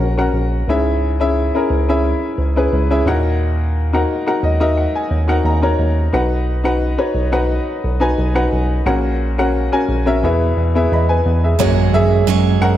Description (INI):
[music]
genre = piano-driven pop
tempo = 88 BPM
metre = 4/4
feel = straight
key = F# mixolydian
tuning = A4 = 441 Hz
[part]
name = clear upright piano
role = accompaniment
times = 0.0-12.8 s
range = G#2 to B5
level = -17 LUFS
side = left 1 dB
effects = none
[part]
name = bell-like tine electric piano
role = bass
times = 0.0-12.8 s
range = A#1 to F#2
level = -17 LUFS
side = equal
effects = none
[part]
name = picked steel-string acoustic guitar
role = riff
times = 11.6-12.8 s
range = F#3 to C#5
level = -17 LUFS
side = right 12 dB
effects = none
[part]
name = impact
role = sound effects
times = 11.6-12.8 s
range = none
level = -24 LUFS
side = right 1 dB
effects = none
[sound]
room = light reverb, small room reverb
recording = none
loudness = -14 LUFS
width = side -12 dB against mid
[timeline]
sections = 0.0-11.6 A section; 11.6-12.8 B section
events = upright piano fill 4.1-6.1; impact 11.6-12.8; upright piano solo 11.6-12.8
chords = 0.0 F#/A#; 0.7 C#m; 3.1 D#m; 6.1 B; 8.9 F#/A#; 10.2 E; 11.6 F#add9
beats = 0.00 | 0.68 1.36 2.04 2.73 | 3.41 4.09 4.77 5.46 | 6.14 6.82 7.50 8.18 | 8.87 9.55 10.23 10.91 | 11.59 12.28